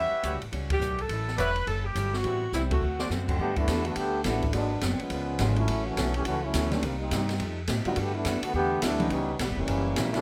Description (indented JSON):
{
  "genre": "jazz, big band swing",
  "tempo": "210 BPM",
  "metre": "4/4",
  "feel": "swing 62% on 8ths",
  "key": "unclear",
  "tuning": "A4 = 440 Hz",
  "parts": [
    { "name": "warm saxophone section", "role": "melody", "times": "0.0-3.1 s", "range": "E4 to E5", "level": "-32 LUFS", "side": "equal", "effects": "none" },
    { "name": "picked acoustic archtop guitar", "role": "accompaniment", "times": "0.0-10.2 s", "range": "F#2 to A4", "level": "-39 LUFS", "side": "equal", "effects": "none" },
    { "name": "mellow trumpet section", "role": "stabs", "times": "0.0-3.1 s", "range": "F#4 to F#5", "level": "-37 LUFS", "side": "equal", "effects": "none" },
    { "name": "upright bass", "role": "bass", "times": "0.0-10.2 s", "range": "E1 to A2", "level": "-33 LUFS", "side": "equal", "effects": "none" },
    { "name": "open jazz drum kit", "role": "drums", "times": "0.2-10.2 s", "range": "crash cymbal, hi-hat, kick drum, ride cymbal, snare drum", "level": "-35 LUFS", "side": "equal", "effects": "none" },
    { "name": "warm grand piano", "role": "accompaniment", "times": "2.2-10.2 s", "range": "D3 to A4", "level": "-35 LUFS", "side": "equal", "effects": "none" },
    { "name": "clear trombone section", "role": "second line", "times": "3.3-10.2 s", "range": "D3 to G4", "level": "-32 LUFS", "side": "equal", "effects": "none" }
  ],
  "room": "light reverb",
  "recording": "close, detailed microphones",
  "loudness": "-28 LUFS",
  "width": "mono",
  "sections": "0.0-3.4 A section; 3.4-10.2 B section",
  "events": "band accent 0.7, 2.7; drum fill 2.5-3.1; trombone section solo 3.4-10.2",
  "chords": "0.0 A13; 1.1 Dmaj9; 2.2 Am7; 2.8 D7; 3.4 Gmaj9; 4.5 G#m7b5; 5.1 C#7b9; 5.7 F#m7; 6.8 Cm7; 7.4 F9; 8.0 Gmaj9; 9.1 C#m7b5; 9.7 F#7b9"
}